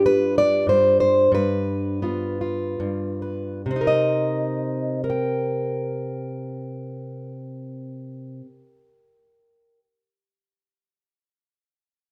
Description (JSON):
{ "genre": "folk, solo fingerstyle acoustic guitar", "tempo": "43-65 BPM (dotted quarters)", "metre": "6/8", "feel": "straight", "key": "C minor", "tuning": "A4 = 440 Hz", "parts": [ { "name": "fingerpicked plugged-in steel-string acoustic guitar", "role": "solo", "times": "0.0-9.8 s", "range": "G2 to G5", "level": "-23 LUFS", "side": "equal", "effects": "none" } ], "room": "light reverb", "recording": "none", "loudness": "-23 LUFS", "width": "mono", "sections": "0.0-3.7 A section; 3.7-9.1 B section", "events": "slowing down 0.0-3.7", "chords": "0.0 G7; 3.7 Cm7", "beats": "0.35 | 1.32 2.40 | 3.66 5.03 | 6.39 7.75" }